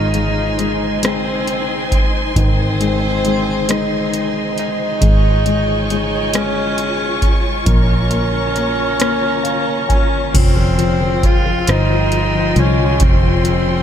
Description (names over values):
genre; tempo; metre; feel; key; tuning
six-eight pop ballad; 45 BPM (dotted quarters); 6/8; straight; unclear; A4 = 440 Hz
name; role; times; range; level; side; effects
warm tenor saxophone; melody; 0.0-13.8 s; C4 to F4; -20 LUFS; right 1 dB; ping-pong delay
warm upright piano; accompaniment; 0.0-13.8 s; Eb3 to Ab5; -21 LUFS; left 4 dB; none
dark studio string section; sustained chords; 0.0-13.8 s; Ab3 to Db6; -23 LUFS; equal; none
fingered electric bass; bass; 0.0-13.8 s; F1 to C2; -19 LUFS; right 1 dB; none
booming analog drum machine; drums; 0.1-13.7 s; crash cymbal, hi-hat, kick drum, rim click; -18 LUFS; equal; overdrive
room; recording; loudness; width
moderate huge ambient reverb, RT60 7.8 s; dreamy mix soaked in reverb; -13 LUFS; side -9 dB against mid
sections
0.0-10.3 A section; 10.3-13.8 B section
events
upright piano fill 9.0-10.3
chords
0.0 Ab; 5.0 Db/Ab; 7.7 Bbm; 10.3 Fmadd9